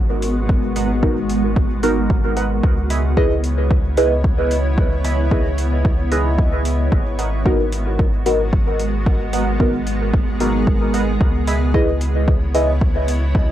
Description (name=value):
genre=dub techno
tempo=112 BPM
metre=4/4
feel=swing 55% on 16ths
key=G# minor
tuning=A4 = 440 Hz
part: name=granular cloud pad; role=sustained chords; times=0.0-13.5 s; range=G#3 to C#5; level=-24 LUFS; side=right 1 dB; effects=built-in reverb, sidechain pumping
part: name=warm sub bass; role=bass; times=0.0-13.5 s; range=G#1 to C#2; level=-21 LUFS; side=equal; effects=transformer saturation, sidechain pumping
part: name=electronic hi-hat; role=drums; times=0.2-13.2 s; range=none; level=-32 LUFS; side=equal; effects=overdrive
part: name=electronic kick drum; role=drums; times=0.5-13.5 s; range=none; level=-18 LUFS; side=equal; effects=overdrive
part: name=warbly lo-fi synth keys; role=riff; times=0.8-11.6 s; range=A#4 to B5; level=-30 LUFS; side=right 4 dB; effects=chorus, sidechain pumping, dub echo
part: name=deep mellow chord stab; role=stabs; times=1.0-12.7 s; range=B3 to D#5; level=-22 LUFS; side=equal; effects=chorus, phaser, sidechain pumping, dub echo
room=little or no reverb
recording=dry, gritty hardware recording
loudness=-15 LUFS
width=side -12 dB against mid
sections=0.0-13.5 A section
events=none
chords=0.0 G#m7; 2.6 C#m7; 6.9 G#m7; 11.2 C#m7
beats=| 0.49 1.03 1.56 2.10 | 2.63 3.17 3.71 4.24 | 4.78 5.31 5.85 6.38 | 6.92 7.46 7.99 8.53 | 9.06 9.60 10.13 10.67 | 11.21 11.74 12.28 12.81 | 13.35